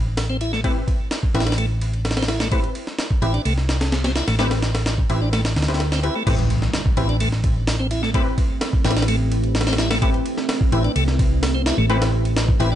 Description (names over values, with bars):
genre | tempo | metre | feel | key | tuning
breakbeat, breaks | 128 BPM | 4/4 | straight | A minor | A4 = 441 Hz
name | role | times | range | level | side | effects
hollow-body short-scale fingered electric bass | bass | 0.0-12.8 s | A1 to D2 | -21 LUFS | equal | none
breakbeat sampler-style drum kit | drums | 0.2-12.7 s | crash cymbal, hi-hat, kick drum, ride cymbal, snare drum | -22 LUFS | equal | none
tonewheel organ | riff | 0.3-12.8 s | A3 to E4 | -27 LUFS | equal | slow rotary speaker, overdrive, tape echo
orchestra-hit-like synth stab | stabs | 0.6-12.8 s | C4 to B4 | -28 LUFS | left 3 dB | built-in reverb, tape echo
deep dark ambient pad | sustained chords | 7.7-12.8 s | A3 to B4 | -27 LUFS | right 1 dB | chorus, built-in reverb, vintage 12-bit sampler grit, sidechain pumping
impact | sound effects | 6.3-8.1 s | none | -28 LUFS | equal | none
room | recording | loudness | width
little or no reverb | dark, warm production, nothing above 10.3 kHz | -18 LUFS | side -11 dB against mid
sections
0.0-6.3 A section; 6.3-12.8 B section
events
drop 6.3-12.8; impact 6.3-8.1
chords
0.0 Am9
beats
0.17 | 0.64 1.11 1.58 2.05 | 2.52 2.99 3.46 3.92 | 4.39 4.86 5.33 5.80 | 6.27 6.74 7.21 7.67 | 8.14 8.61 9.08 9.55 | 10.02 10.49 10.96 11.42 | 11.89 12.36